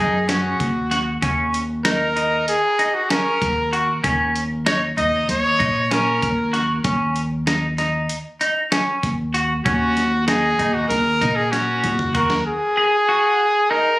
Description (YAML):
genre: progressive instrumental, band music in an uneven meter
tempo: 192 BPM (eighths)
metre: 9/8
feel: straight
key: unclear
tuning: A4 = 440 Hz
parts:
  - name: bright trumpet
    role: melody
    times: 0.0-14.0 s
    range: Gb4 to Eb5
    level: -20 LUFS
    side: equal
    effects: digital delay
  - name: semi-hollow electric guitar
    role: arpeggios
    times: 0.0-13.9 s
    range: Db4 to Ab4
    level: -21 LUFS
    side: equal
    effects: lush chorus
  - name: upright bass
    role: bass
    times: 0.0-12.4 s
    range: Eb2 to Bb2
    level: -23 LUFS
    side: equal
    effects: none
  - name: dusty soul sampler-style drum kit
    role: drums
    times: 0.3-12.4 s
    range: hi-hat, kick drum, snare drum, toms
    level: -24 LUFS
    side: equal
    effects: overdrive
room: moderate studio reverb, RT60 0.5 s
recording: recorded on a phone in the room, studio reverb, compression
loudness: -17 LUFS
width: side -19 dB against mid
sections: 0.0-12.5 A section; 12.5-14.0 B section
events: drum fill 11.5-12.5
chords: 0.0 Ebm7; 1.2 Gb6/Eb (rootless); 12.5 Ebm